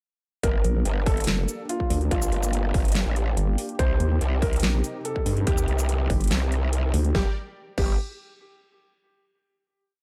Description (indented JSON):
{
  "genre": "heavy wobble dubstep",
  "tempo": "143 BPM",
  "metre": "4/4",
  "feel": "half-time",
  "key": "G minor",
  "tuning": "A4 = 441 Hz",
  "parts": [
    { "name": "felt-muted upright piano", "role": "melody", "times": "0.4-7.9 s", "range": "F4 to C5", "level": "-35 LUFS", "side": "equal", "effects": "tape echo" },
    { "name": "supersaw chords", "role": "sustained chords", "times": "0.4-7.3 s", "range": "C3 to D5", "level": "-38 LUFS", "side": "equal", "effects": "sidechain pumping, low-pass filter" },
    { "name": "growl bass", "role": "bass", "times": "0.4-8.0 s", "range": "G1 to Eb2", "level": "-27 LUFS", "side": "equal", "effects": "chorus, overdrive" },
    { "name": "dubstep drum kit", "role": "drums", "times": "0.4-7.9 s", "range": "crash cymbal, handclaps, hi-hat, shaker, snare drum", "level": "-33 LUFS", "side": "equal", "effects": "none" },
    { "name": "electronic kick drum", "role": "drums", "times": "0.4-7.9 s", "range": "none", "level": "-27 LUFS", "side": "equal", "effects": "distortion" },
    { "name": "vowel-sweep wobble bass", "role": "bass", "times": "0.6-7.1 s", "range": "F1 to G2", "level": "-25 LUFS", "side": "equal", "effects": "chorus, overdrive" }
  ],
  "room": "little or no reverb",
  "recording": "dark, warm production",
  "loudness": "-24 LUFS",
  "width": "mono",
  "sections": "0.4-7.1 drop; 7.1-8.8 final chord",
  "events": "drop 0.4-7.1",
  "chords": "0.4 Gm; 3.8 Cm; 7.1 N.C."
}